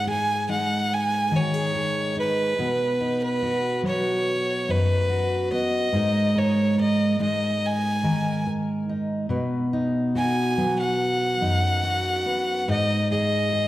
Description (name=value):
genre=acoustic folk-pop ballad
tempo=71 BPM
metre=4/4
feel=straight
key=B major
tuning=A4 = 440 Hz
part: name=bright violin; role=melody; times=0.0-13.7 s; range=B4 to G#5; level=-25 LUFS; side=equal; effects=none
part: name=fingerpicked steel-string acoustic guitar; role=accompaniment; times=0.0-13.7 s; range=F#2 to A#4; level=-23 LUFS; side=equal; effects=none
room=wet scoring stage reverb, RT60 1.5 s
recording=dark, warm production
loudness=-21 LUFS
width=side -15 dB against mid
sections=0.0-13.7 A section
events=none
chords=0.0 G#5; 2.6 B; 5.9 G#sus2; 9.3 B; 12.7 G#5